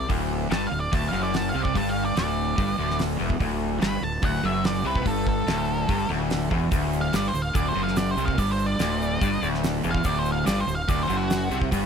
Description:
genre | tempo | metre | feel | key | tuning
classic rock | 145 BPM | 4/4 | straight | D mixolydian | A4 = 443 Hz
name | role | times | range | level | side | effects
octave-fuzz lead guitar | melody | 0.0-11.6 s | F#4 to B5 | -29 LUFS | right 1 dB | distortion
crunchy overdriven guitar | riff | 0.0-11.9 s | D2 to C3 | -28 LUFS | left 11 dB | none
fuzz fingered electric bass | bass | 0.0-11.9 s | D1 to C2 | -30 LUFS | right 1 dB | overdrive
overdriven electric guitar | riff | 0.1-11.9 s | D2 to C3 | -29 LUFS | right 15 dB | none
damped 70s drum kit | drums | 0.1-11.8 s | hi-hat, kick drum, snare drum | -29 LUFS | right 1 dB | none
tube shaker | percussion | 6.7-11.8 s | none | -43 LUFS | right 14 dB | none
room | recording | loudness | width
studio ambience | none | -22 LUFS | side -7 dB against mid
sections
0.0-11.9 A section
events
lead electric guitar solo 0.0-11.9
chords
0.0 D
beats
| 0.09 0.51 0.92 1.34 | 1.75 2.16 2.58 2.99 | 3.41 3.82 4.23 4.65 | 5.06 5.48 5.89 6.30 | 6.72 7.13 7.55 7.97 | 8.38 8.80 9.21 9.63 | 10.05 10.46 10.88 11.30 | 11.71

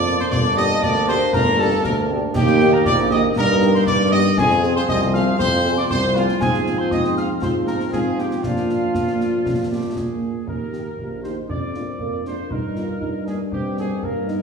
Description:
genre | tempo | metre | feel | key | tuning
military-style march for wind band | 118 BPM | 2/4 | straight | Eb major | A4 = 440 Hz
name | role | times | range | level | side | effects
mellow trumpet section | melody | 0.0-14.4 s | F4 to F5 | -24 LUFS | equal | none
wooden piccolo | second line | 0.0-9.9 s | F5 to F6 | -25 LUFS | left 1 dB | none
warm trombone section | sustained chords | 0.0-10.2 s | F3 to Eb4 | -26 LUFS | right 2 dB | none
warm tuba | bass | 0.0-14.4 s | G1 to Bb2 | -21 LUFS | right 1 dB | none
mellow French horn section | accompaniment | 0.1-14.4 s | Eb3 to Ab4 | -26 LUFS | left 3 dB | none
concert snare drum, concert bass drum and clash cymbals | drums | 0.1-14.4 s | none | -28 LUFS | left 1 dB | none
mellow euphonium | second line | 11.0-14.4 s | Bb3 to G4 | -29 LUFS | right 3 dB | none
room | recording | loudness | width
wet recital hall reverb, RT60 1.4 s | recorded in a church or concert hall, studio ambience | -17 LUFS | side -5 dB against mid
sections
0.0-10.5 A section; 10.5-14.4 B section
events
none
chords
0.3 Gm; 2.3 Eb; 3.4 Eb/G; 4.4 Fm; 6.4 Fm/Ab; 8.4 Bb; 10.5 Eb; 11.5 Bb7/F; 12.5 Eb/G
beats
| 0.32 0.82 | 1.33 1.84 | 2.35 2.86 | 3.36 3.87 | 4.38 4.89 | 5.39 5.90 | 6.41 6.92 | 7.42 7.93 | 8.44 8.95 | 9.45 9.96 | 10.47 10.98 | 11.49 11.99 | 12.50 13.01 | 13.52 14.03

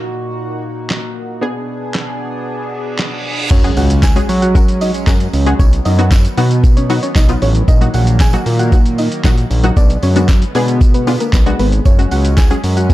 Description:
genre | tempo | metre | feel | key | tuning
dance-pop | 115 BPM | 4/4 | straight | unclear | A4 = 440 Hz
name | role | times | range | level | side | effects
punchy chord stab | accompaniment | 0.0-12.9 s | F#3 to A#4 | -19 LUFS | left 2 dB | chorus, sidechain pumping
chorused pulse-width pad | sustained chords | 0.0-12.9 s | A#2 to G#4 | -24 LUFS | right 1 dB | sidechain pumping
lo-fi sampler-style drum kit | drums | 0.9-12.9 s | crash cymbal, handclaps, hi-hat, kick drum, shaker, snare drum | -13 LUFS | equal | none
reverse cymbal and impact | sound effects | 2.9-5.6 s | none | -23 LUFS | equal | none
soft round pluck | melody | 3.5-12.9 s | A#3 to G#5 | -22 LUFS | equal | chorus, tape echo
fat analog bass | bass | 3.5-12.9 s | F#1 to F#3 | -14 LUFS | equal | sidechain pumping
tambourine | percussion | 3.5-12.9 s | none | -36 LUFS | right 8 dB | none
room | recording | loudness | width
little or no reverb | dark, warm production | -11 LUFS | side -16 dB against mid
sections
0.0-3.5 A section; 3.5-12.9 B section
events
reverse cymbal 2.9-3.5; drop 3.5-12.9; impact 3.5-5.6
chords
0.0 D#m/A#; 1.4 Bm6; 3.5 F#sus2; 5.6 B; 7.7 D#m/A#; 9.8 Bm6; 11.9 F#sus2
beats
0.38 0.90 | 1.42 1.94 2.46 2.98 | 3.51 4.03 4.55 5.07 | 5.59 6.12 6.64 7.16 | 7.68 8.20 8.72 9.25 | 9.77 10.29 10.81 11.33 | 11.86 12.38 12.90

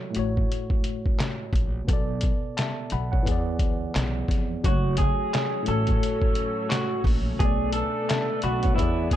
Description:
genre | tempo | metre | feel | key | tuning
hip hop, boom-bap hip-hop | 87 BPM | 4/4 | swing 56% on 16ths | unclear | A4 = 440 Hz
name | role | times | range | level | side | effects
mellow tine electric piano | accompaniment | 0.0-9.2 s | A2 to B5 | -30 LUFS | left 2 dB | medium stereo tremolo, cassette tape, high-pass filter, low-pass filter
trip hop sampler-style drum kit | drums | 0.1-9.2 s | handclaps, hi-hat, kick drum, snare drum | -25 LUFS | equal | vintage 12-bit sampler grit
upright bass | bass | 0.2-9.2 s | F#1 to E#2 | -28 LUFS | equal | none
electric guitar through a small old amp | melody | 4.7-9.2 s | E4 to A4 | -28 LUFS | equal | high-pass filter, low-pass filter, tape echo
lush unison pad | sustained chords | 4.7-9.2 s | E3 to G#4 | -35 LUFS | right 1 dB | chorus, high-pass filter, low-pass filter
room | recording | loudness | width
little or no reverb | dark, warm production | -22 LUFS | side -12 dB against mid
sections
0.0-4.6 A section; 4.6-9.2 B section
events
none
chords
0.2 A6; 1.9 Bm7; 3.3 E7; 4.6 F#m; 5.7 A6; 7.4 Bm7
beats
0.51 1.20 | 1.88 2.57 3.26 3.95 | 4.64 5.33 6.02 6.71 | 7.40 8.09 8.78

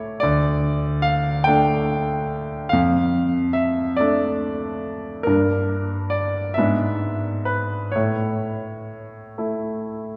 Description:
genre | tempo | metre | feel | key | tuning
classical, romantic nocturne for solo piano | 41-49 BPM (dotted quarters) | 12/8 | rubato | D minor | A4 = 440 Hz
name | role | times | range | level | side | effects
bright concert grand piano | solo | 0.0-10.2 s | D2 to G5 | -22 LUFS | equal | none
room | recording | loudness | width
wet church reverb, RT60 2.8 s | recorded in a church or concert hall | -22 LUFS | mono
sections
0.0-10.2 A section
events
none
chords
0.2 D5; 2.7 Dm/F; 5.3 Gm; 6.6 E7/G#; 7.9 A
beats
| 0.23 1.48 2.73 4.01 | 5.27 6.58 7.95 9.38

